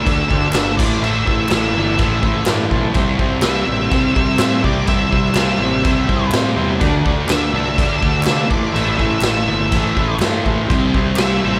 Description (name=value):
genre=garage rock duo or trio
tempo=124 BPM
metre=4/4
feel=straight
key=unclear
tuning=A4 = 440 Hz
part: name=octave-fuzz lead guitar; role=melody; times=0.0-11.6 s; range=D5 to E5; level=-24 LUFS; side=equal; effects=distortion
part: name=fuzz guitar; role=riff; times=0.0-11.6 s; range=A2 to D4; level=-21 LUFS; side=equal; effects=distortion
part: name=fuzz fingered electric bass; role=bass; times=0.0-11.6 s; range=G1 to C3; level=-26 LUFS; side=equal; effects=overdrive
part: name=overdriven combo organ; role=sustained chords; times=0.1-11.6 s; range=D4 to E5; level=-29 LUFS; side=equal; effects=none
part: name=raw garage drum kit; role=drums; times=0.1-11.3 s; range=crash cymbal, kick drum, snare drum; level=-21 LUFS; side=equal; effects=none
part: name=group handclap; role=percussion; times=0.5-11.3 s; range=none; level=-33 LUFS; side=equal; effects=none
room=moderate large studio reverb, RT60 0.9 s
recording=band playing live in one room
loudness=-17 LUFS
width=mono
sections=0.0-11.6 A section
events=none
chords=0.0 D; 0.8 Am; 2.9 C; 6.8 D; 8.5 Am; 10.7 C